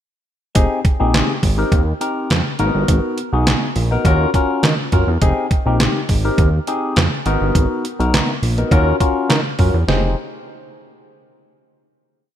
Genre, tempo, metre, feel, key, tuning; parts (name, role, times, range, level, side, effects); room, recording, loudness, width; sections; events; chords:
early-eighties boogie funk; 103 BPM; 4/4; straight; F phrygian; A4 = 441 Hz
barky tine electric piano; accompaniment; 0.5-10.2 s; Bb3 to C5; -20 LUFS; left 2 dB; overdrive, phaser
fat analog bass; bass; 0.6-10.2 s; F1 to Eb3; -17 LUFS; equal
detuned 8-bit digital drum machine; drums; 0.6-10.0 s; handclaps, hi-hat, kick drum, snare drum; -17 LUFS; right 1 dB; gated reverb
light reverb; bright 1980s-style digital production; -14 LUFS; side -10 dB against mid
0.6-9.9 verse; 9.9-12.2 final chord
0.6 Fm9; 2.6 Abm9; 4.1 Ebm9; 5.2 Fm9; 7.3 Abm9; 8.7 Ebm9; 9.9 Fm9